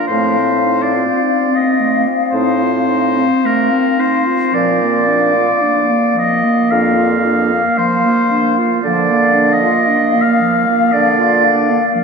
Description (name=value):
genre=classical, slow romantic movement for wind quintet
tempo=53-58 BPM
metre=4/4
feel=rubato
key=Bb major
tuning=A4 = 439 Hz
part: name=hollow concert flute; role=melody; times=0.0-12.0 s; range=F5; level=-19 LUFS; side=left 7 dB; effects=none
part: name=clear oboe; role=second line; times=0.0-12.0 s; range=Bb4 to F5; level=-16 LUFS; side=equal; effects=none
part: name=clear clarinet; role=accompaniment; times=0.0-12.0 s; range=F3 to F4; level=-19 LUFS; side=right 4 dB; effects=none
part: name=mellow French horn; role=accompaniment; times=0.0-12.0 s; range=Bb3 to C4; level=-18 LUFS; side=equal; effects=none
part: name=mellow bassoon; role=bass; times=0.1-11.8 s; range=F2 to D3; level=-19 LUFS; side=right 6 dB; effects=none
room=wet cathedral reverb, RT60 6.1 s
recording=in a vast, echoing space, lossy compression artefacts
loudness=-11 LUFS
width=side -5 dB against mid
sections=0.0-12.0 A section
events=none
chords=0.1 F7/A; 4.5 Bb; 8.8 Bb/D